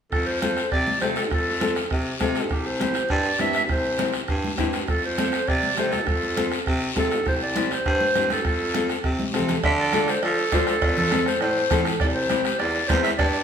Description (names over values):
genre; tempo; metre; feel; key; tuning
latin, cumbia; 202 BPM; 4/4; straight; F major; A4 = 438 Hz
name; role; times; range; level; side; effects
clear clarinet; melody; 0.1-13.4 s; G4 to E5; -24 LUFS; right 1 dB; none
raspy baritone saxophone; bass; 0.1-13.4 s; C2 to F3; -27 LUFS; equal; none
bombo; percussion; 0.1-13.3 s; none; -28 LUFS; right 2 dB; none
congas; percussion; 0.1-13.3 s; none; -32 LUFS; right 1 dB; none
guiro; percussion; 0.1-13.4 s; none; -32 LUFS; left 4 dB; none
nylon-string guitar; accompaniment; 0.4-13.1 s; C4 to C5; -28 LUFS; left 4 dB; none
cowbell and timbales; percussion; 9.6-13.3 s; none; -32 LUFS; right 2 dB; none
room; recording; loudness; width
wet stone room reverb, RT60 1.2 s; band playing live in one room; -20 LUFS; side -8 dB against mid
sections
0.1-9.6 A section; 9.6-13.4 B section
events
drum fill 9.2-9.6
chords
0.1 F; 2.5 C; 4.9 F; 7.3 C; 8.4 F; 9.6 Dm; 10.8 F; 12.0 C